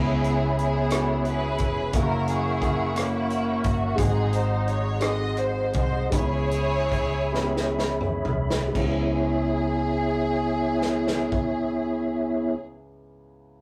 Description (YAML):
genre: slow gospel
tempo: 39-59 BPM (dotted quarters)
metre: 6/8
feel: straight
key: C# minor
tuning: A4 = 438 Hz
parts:
  - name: clear studio string section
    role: melody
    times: 0.0-12.6 s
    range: A#3 to D#5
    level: -32 LUFS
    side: equal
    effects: none
  - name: dark grand piano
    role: accompaniment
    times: 0.0-13.6 s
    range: C#2 to B5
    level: -33 LUFS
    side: equal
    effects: none
  - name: mellow tonewheel organ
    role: sustained chords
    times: 0.0-12.6 s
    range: B3 to C#6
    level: -30 LUFS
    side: equal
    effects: fast rotary speaker, chorus vibrato
  - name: fingered electric bass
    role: bass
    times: 0.0-12.5 s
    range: E#1 to C#2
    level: -31 LUFS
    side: equal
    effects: none
  - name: natural country drum kit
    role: drums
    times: 0.2-11.6 s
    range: crash cymbal, hi-hat, kick drum, rim click, snare drum, toms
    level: -32 LUFS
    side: equal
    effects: none
room: wet small room reverb, RT60 0.6 s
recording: rough rehearsal-room recording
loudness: -25 LUFS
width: mono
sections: 0.0-8.8 A section; 8.8-13.6 B section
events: slowing down 4.0-8.8; drum fill 7.3-8.8; grand piano fill 7.3-8.8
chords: 0.0 C#m7; 1.9 F#7; 4.0 G#7; 6.1 C#m7